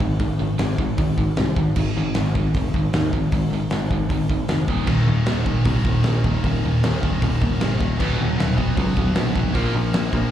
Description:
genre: punk rock.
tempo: 154 BPM.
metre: 4/4.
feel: straight.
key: unclear.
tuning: A4 = 440 Hz.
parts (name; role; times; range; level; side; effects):
biting overdriven guitar; riff; 0.0-10.3 s; Eb2 to B3; -27 LUFS; right 8 dB; none.
crunchy overdriven guitar; riff; 0.0-10.3 s; Eb2 to B3; -24 LUFS; left 5 dB; none.
picked electric bass; bass; 0.0-10.3 s; Eb1 to Eb2; -24 LUFS; equal; none.
big rock drum kit; drums; 0.0-10.2 s; crash cymbal, hi-hat, kick drum, snare drum; -24 LUFS; equal; none.
tight distorted guitar; riff; 4.9-10.3 s; Eb2 to B3; -28 LUFS; equal; distortion.
room: small room reverb.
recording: live gig heard through the venue's PA, club reverb.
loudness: -18 LUFS.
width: side -11 dB against mid.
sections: 0.0-10.3 A section.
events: none.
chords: 0.0 Ab5; 4.7 Eb5; 8.0 B/D#; 9.6 Bb5.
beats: | 0.20 0.59 0.98 1.37 | 1.76 2.15 2.54 2.94 | 3.33 3.72 4.11 4.50 | 4.89 5.28 5.67 6.06 | 6.45 6.83 7.22 7.61 | 8.00 8.39 8.78 9.17 | 9.55 9.94.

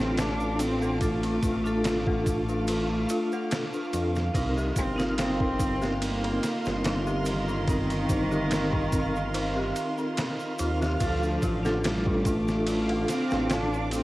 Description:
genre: trip hop.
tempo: 72 BPM.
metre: 4/4.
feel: swing 54% on 16ths.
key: D phrygian.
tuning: A4 = 440 Hz.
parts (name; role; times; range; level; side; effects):
dark cello; melody; 0.0-14.0 s; Eb3 to D4; -31 LUFS; equal; tape echo.
vibraphone with hard mallets; accompaniment; 0.0-14.0 s; C4 to Bb4; -31 LUFS; equal; tremolo, cassette tape.
bright studio violin section; sustained chords; 0.0-14.0 s; A4 to D6; -40 LUFS; equal; cassette tape.
dark detuned synth bell; arpeggios; 0.0-14.0 s; C4 to A4; -36 LUFS; left 2 dB; chorus, cassette tape, tape echo, plate reverb.
dark detuned saw bass; bass; 0.0-14.0 s; G1 to F2; -31 LUFS; equal; none.
trip hop sampler-style drum kit; drums; 0.0-14.0 s; kick drum, ride cymbal, snare drum; -32 LUFS; equal; studio ambience.
backwards swelling texture; texture; 0.0-14.0 s; F4 to F5; -36 LUFS; right 2 dB; built-in reverb, cassette tape, plate reverb.
tube shaker; percussion; 0.2-14.0 s; none; -44 LUFS; right 2 dB; none.
room: moderate booth ambience, RT60 0.2 s.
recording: home recording on cassette.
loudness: -24 LUFS.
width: side -18 dB against mid.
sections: 0.0-14.0 A section.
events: none.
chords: 0.0 Dm; 4.3 Cm7; 11.0 Dm.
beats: 0.18 | 1.01 1.84 2.68 3.51 | 4.34 5.18 6.01 6.84 | 7.68 8.51 9.34 10.18 | 11.01 11.84 12.68 13.51.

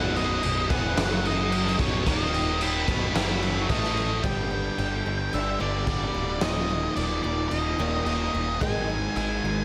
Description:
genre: quiet-loud alternative rock.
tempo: 110 BPM.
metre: 4/4.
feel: straight.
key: unclear.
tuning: A4 = 440 Hz.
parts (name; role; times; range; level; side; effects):
octave-fuzz lead guitar; melody; 0.0-9.6 s; C#5 to B5; -32 LUFS; equal; distortion, slapback echo.
distorted electric guitar; riff; 0.0-9.6 s; B1 to A3; -33 LUFS; equal; overdrive, slapback echo.
heavy high-gain guitar; riff; 0.0-4.2 s; B1 to A3; -36 LUFS; equal; none.
fuzz picked electric bass; bass; 0.0-9.6 s; B0 to A1; -32 LUFS; equal; overdrive.
raw garage drum kit; drums; 0.2-9.3 s; crash cymbal, kick drum, snare drum; -31 LUFS; equal; none.
fingerpicked old ladder-braced acoustic guitar; arpeggios; 4.2-9.6 s; D#2 to G#3; -36 LUFS; equal; slapback echo, analog delay.
room: moderate lush hall reverb, RT60 2.1 s.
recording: big arena sound.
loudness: -26 LUFS.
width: mono.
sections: 0.0-4.2 A section; 4.2-9.6 B section.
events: half time 4.2-9.6.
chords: 0.0 B; 4.2 G5; 6.4 D#5; 8.6 G#5.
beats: 0.43 0.97 1.51 | 2.06 2.60 3.14 3.69 | 4.24 4.78 5.33 5.88 | 6.42 6.97 7.52 8.06 | 8.61 9.16.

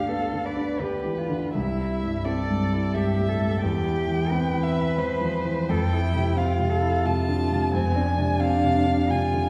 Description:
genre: classical, slow romantic movement for piano trio.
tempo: 87 BPM.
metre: 3/4.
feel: uneven beats, rubato.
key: C major.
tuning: A4 = 440 Hz.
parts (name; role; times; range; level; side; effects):
warm violin; melody; 0.0-9.5 s; B4 to A5; -32 LUFS; equal; none.
rich cello; second line; 0.0-9.5 s; C4 to B4; -32 LUFS; equal; none.
warm concert grand piano; accompaniment; 0.0-9.5 s; C2 to E4; -26 LUFS; equal; none.
room: wet recital hall reverb, RT60 1.5 s.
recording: heard from further back in the room.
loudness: -24 LUFS.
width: mono.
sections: 0.0-9.5 A section.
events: none.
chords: 0.0 Dm69; 1.5 C; 3.6 C/E; 5.7 Fmaj7; 7.7 Dm7b5/F.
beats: 0.10 0.80 | 1.55 2.25 2.94 | 3.62 4.29 4.97 | 5.68 6.36 7.05 | 7.73 8.41 9.10.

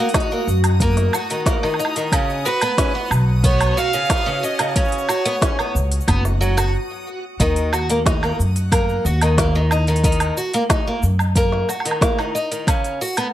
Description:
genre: folktronica.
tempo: 91 BPM.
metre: 4/4.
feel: straight.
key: Eb minor.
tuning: A4 = 441 Hz.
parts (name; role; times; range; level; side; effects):
warm violin; melody; 0.0-5.7 s; B4 to Gb5; -23 LUFS; right 2 dB; plate reverb, tape echo.
picked twelve-string acoustic guitar; arpeggios; 0.0-13.3 s; C#3 to Gb4; -22 LUFS; equal; plate reverb, tape echo.
backwards swelling texture; texture; 0.0-6.7 s; Gb4 to Eb6; -30 LUFS; right 1 dB; built-in reverb.
electronic kick drum; drums; 0.1-12.8 s; none; -20 LUFS; equal; overdrive.
organic electronic drum kit; drums; 0.1-13.3 s; hi-hat, shaker, snare drum, woodblock; -24 LUFS; right 1 dB; overdrive.
upright bass; bass; 0.5-11.6 s; F#1 to Gb2; -18 LUFS; equal; none.
room: light reverb.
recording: none.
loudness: -16 LUFS.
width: side -13 dB against mid.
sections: 0.0-7.4 A section; 7.4-13.3 A section.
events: break 6.7-7.4.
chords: 0.0 Ebm; 2.1 Bsus2; 7.4 Ebm; 12.7 Bsus2.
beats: 0.14 0.81 1.46 | 2.12 2.78 3.44 4.10 | 4.76 5.42 6.08 6.74 | 7.40 8.06 8.72 9.38 | 10.04 10.70 11.35 12.01 | 12.67.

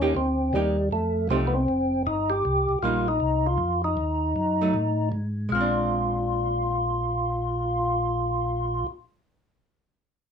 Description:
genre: soul jazz organ trio.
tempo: 157 BPM.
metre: 4/4.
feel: swing 64% on 8ths.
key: Bb mixolydian.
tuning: A4 = 442 Hz.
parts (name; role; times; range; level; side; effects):
percussive tonewheel organ; melody; 0.0-8.9 s; G3 to G4; -24 LUFS; equal; overdrive, chorus vibrato, slow rotary speaker.
archtop guitar, miked and amplified; accompaniment; 0.0-9.0 s; F3 to G4; -28 LUFS; right 2 dB; none.
mellow tonewheel organ; bass; 0.0-8.8 s; F1 to A2; -28 LUFS; equal; slow rotary speaker.
room: light reverb.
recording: small room ambience.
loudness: -23 LUFS.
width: side -7 dB against mid.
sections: 0.0-5.5 A section; 5.5-8.6 B section.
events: none.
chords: 0.0 Cm7; 0.9 F9; 2.4 Cm7; 4.0 Ebdim; 5.5 Bb9.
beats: 0.15 0.53 | 0.91 1.30 1.68 2.06 | 2.45 2.83 3.21 3.60 | 3.98 4.36 4.75 5.13 | 5.51 5.89 6.28 6.66 | 7.04 7.43 7.81 8.19.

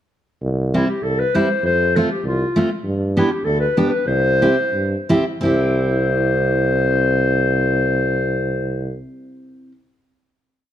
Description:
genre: alpine folk, alpine dance band.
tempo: 84-100 BPM.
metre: 2/4.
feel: swing 53% on 8ths.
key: C major.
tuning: A4 = 440 Hz.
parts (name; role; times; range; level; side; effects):
warm tuba; bass; 0.4-9.0 s; C2 to G2; -20 LUFS; right 1 dB; none.
fingerpicked steel-string acoustic guitar; accompaniment; 0.7-9.7 s; G3 to G4; -21 LUFS; right 1 dB; none.
mellow clarinet; melody; 0.8-9.0 s; E4 to C5; -20 LUFS; left 2 dB; none.
room: moderate recital hall reverb, RT60 1.5 s.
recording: dark, warm production.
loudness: -16 LUFS.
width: side -10 dB against mid.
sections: 0.4-5.4 A section; 5.4-8.3 final chord.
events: slowing down 2.8-5.4.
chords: 0.4 C; 1.6 F; 2.8 G; 4.1 C.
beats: | 0.42 1.02 | 1.63 2.23 | 2.84 3.44 | 4.06 4.71 | 5.41 6.12 | 6.83 7.54.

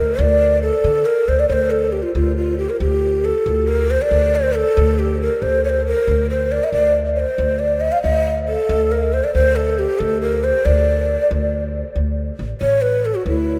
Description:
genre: persian.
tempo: 92 BPM (dotted quarters).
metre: 6/8.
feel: straight.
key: D dastgah shur.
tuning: A4 = 439 Hz.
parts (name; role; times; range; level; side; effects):
breathy mellow ney; melody; 0.0-13.6 s; E4 to F5; -19 LUFS; equal; none.
upright bass; bass; 0.0-13.6 s; A1 to D3; -23 LUFS; equal; none.
room: wet cathedral reverb, RT60 5.5 s.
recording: in a vast, echoing space.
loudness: -18 LUFS.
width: mono.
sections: 0.0-1.5 A section; 1.5-12.0 B section; 12.0-13.6 C section.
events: none.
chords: none.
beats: | 0.19 0.85 | 1.50 2.15 | 2.81 3.46 | 4.12 4.77 | 5.43 6.08 | 6.73 7.39 | 8.04 8.70 | 9.35 10.00 | 10.65 11.31 | 11.96 12.61 | 13.27.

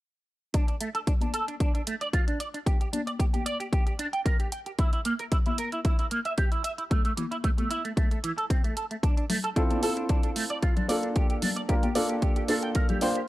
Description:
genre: nu-disco, nu disco.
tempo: 113 BPM.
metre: 4/4.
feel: swing 53% on 16ths.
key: D minor.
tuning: A4 = 440 Hz.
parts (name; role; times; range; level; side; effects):
electric guitar with an envelope filter; riff; 0.5-13.2 s; E3 to G5; -31 LUFS; right 2 dB; ensemble chorus, low-pass filter.
electronic hi-hat; drums; 0.5-13.3 s; none; -37 LUFS; right 2 dB; overdrive.
electronic kick drum; drums; 0.5-12.9 s; none; -25 LUFS; equal; overdrive.
congas; percussion; 1.2-13.0 s; none; -34 LUFS; left 4 dB; none.
warm baby grand piano; accompaniment; 9.6-13.2 s; Bb3 to C5; -28 LUFS; equal; sidechain pumping, analog delay.
room: little or no reverb.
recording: dry, gritty hardware recording.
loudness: -25 LUFS.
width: side -16 dB against mid.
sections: 0.5-13.3 A section.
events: none.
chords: 0.5 D5; 2.7 G5; 4.8 N.C.; 6.9 A5; 9.0 Dm7; 11.2 Gm7.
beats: | 0.54 1.07 1.60 2.13 | 2.66 3.19 3.73 4.26 | 4.79 5.32 5.85 6.38 | 6.91 7.44 7.97 8.50 | 9.04 9.57 10.10 10.63 | 11.16 11.69 12.22 12.75.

